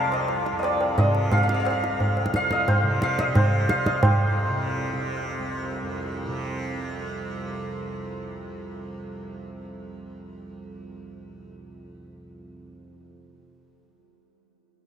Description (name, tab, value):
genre	indian classical, Hindustani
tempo	178 BPM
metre	4/4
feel	straight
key	unclear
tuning	A4 = 442 Hz
part	santur	melody	0.0-6.7 s	C5 to D6	-26 LUFS	left 1 dB	none
part	tanpura	drone	0.0-13.4 s	C2 to C3	-32 LUFS	right 2 dB	none
part	tabla	percussion	0.1-4.2 s	none	-24 LUFS	right 1 dB	none
room	wet huge ambient reverb, RT60 8.8 s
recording	in a vast, echoing space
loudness	-22 LUFS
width	side -8 dB against mid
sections	0.0-4.0 A section; 4.0-6.7 B section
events	speeding up 0.0-6.7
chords	none